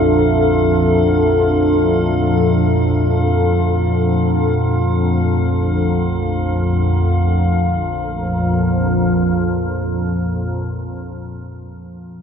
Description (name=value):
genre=dark ambient drone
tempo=free time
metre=none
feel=none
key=unclear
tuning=A4 = 444 Hz
part: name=deep dark ambient pad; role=sustained chords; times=0.0-10.9 s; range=Bb3 to E5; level=-20 LUFS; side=left 1 dB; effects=chorus, built-in reverb
part: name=organ-like drone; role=drone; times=0.0-10.5 s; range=Bb1 to F2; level=-17 LUFS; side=equal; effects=ensemble chorus, built-in reverb
part: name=metallic inharmonic drone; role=texture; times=0.0-7.5 s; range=F4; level=-24 LUFS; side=right 1 dB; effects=chorus, built-in reverb
room=wet cathedral reverb, RT60 5.5 s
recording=none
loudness=-14 LUFS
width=side -7 dB against mid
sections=0.0-7.5 A section; 7.5-12.0 B section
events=none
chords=0.0 Dmadd9; 7.5 Bb5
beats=free time